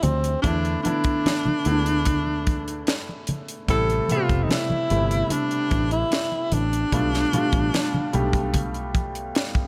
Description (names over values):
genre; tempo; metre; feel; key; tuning
lush 1970s-style soul; 74 BPM; 4/4; straight; unclear; A4 = 443 Hz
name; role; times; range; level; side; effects
breathy tenor saxophone; melody; 0.0-9.0 s; C4 to A4; -27 LUFS; equal; none
warm concert grand piano; accompaniment; 0.0-9.7 s; B2 to E5; -30 LUFS; equal; none
fingered electric bass; bass; 0.0-9.3 s; F1 to E2; -28 LUFS; equal; none
tight funk drum kit; drums; 0.0-9.7 s; hi-hat, kick drum, snare drum; -28 LUFS; equal; none
congas; percussion; 0.0-9.7 s; none; -33 LUFS; equal; none
room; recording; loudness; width
studio reverb; none; -23 LUFS; mono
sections
0.0-9.7 A section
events
none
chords
0.4 E7sus4; 3.7 Am7; 6.9 G9